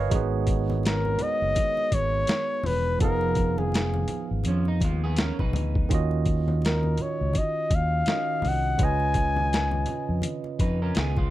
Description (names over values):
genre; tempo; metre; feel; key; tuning
R&B, neo-soul; 83 BPM; 4/4; swing 57% on 16ths; Eb minor; A4 = 440 Hz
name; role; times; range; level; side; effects
barky tine electric piano; accompaniment; 0.0-11.3 s; Db3 to Ab5; -31 LUFS; right 8 dB; overdrive
fingered electric bass; bass; 0.0-11.3 s; Fb1 to F2; -26 LUFS; equal; none
boom bap sampler-style drum kit; drums; 0.1-11.3 s; hi-hat, kick drum, snare drum; -26 LUFS; equal; none
congas; percussion; 0.1-11.3 s; none; -36 LUFS; left 4 dB; none
trumpet with bucket mute; melody; 0.9-10.3 s; Ab4 to Ab5; -26 LUFS; left 2 dB; slapback echo
electric guitar through a small old amp; second line; 4.5-5.9, 10.6-11.3 s; F3 to Cb5; -32 LUFS; right 1 dB; wide subtle chorus
room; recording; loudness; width
little or no reverb; dry, close 1970s-style studio recording; -22 LUFS; side -15 dB against mid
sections
0.0-11.3 A section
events
none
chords
0.1 Abm7; 3.0 Fm7b5; 5.9 Ebm9; 8.8 Db7